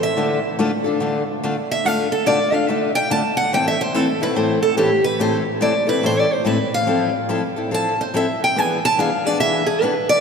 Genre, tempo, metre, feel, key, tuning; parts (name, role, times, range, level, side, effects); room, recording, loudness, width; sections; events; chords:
jazz; 143 BPM; 4/4; swing 63% on 8ths; A minor; A4 = 441 Hz
picked steel-string acoustic guitar; melody; 0.0-10.2 s; G4 to A5; -19 LUFS; right 1 dB
picked steel-string acoustic guitar; accompaniment; 0.2-9.9 s; A2 to A4; -20 LUFS; left 2 dB
wet cathedral reverb, RT60 5.9 s; recorded in a church or concert hall; -17 LUFS; side -6 dB against mid
0.0-10.2 A section
steel-string acoustic guitar solo 0.0-10.2
0.2 Dm; 3.5 Am; 6.9 Fmaj7; 8.6 E7